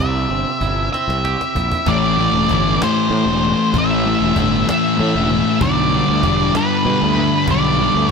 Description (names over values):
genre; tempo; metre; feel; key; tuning
quiet-loud alternative rock; 64 BPM (dotted quarters); 6/8; straight; unclear; A4 = 440 Hz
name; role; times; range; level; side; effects
octave-fuzz lead guitar; melody; 0.0-8.1 s; B4 to E5; -20 LUFS; equal; distortion, slapback echo
twangy electric guitar; arpeggios; 0.0-1.9 s; C3 to G4; -26 LUFS; right 9 dB; slapback echo
fuzz fingered electric bass; bass; 0.0-8.1 s; E1 to B2; -21 LUFS; equal; overdrive
cajon; drums; 0.3-7.9 s; none; -27 LUFS; right 1 dB; none
thick fuzz guitar; riff; 1.9-8.1 s; G2 to A3; -18 LUFS; left 12 dB; distortion
thick fuzz guitar; riff; 1.9-8.1 s; G2 to A3; -21 LUFS; right 12 dB; distortion
room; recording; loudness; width
moderate lush hall reverb, RT60 2.8 s; big arena sound; -14 LUFS; side -5 dB against mid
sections
0.0-1.9 A section; 1.9-8.1 B section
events
drum fill 0.9-1.9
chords
0.0 C; 1.9 Am; 5.6 G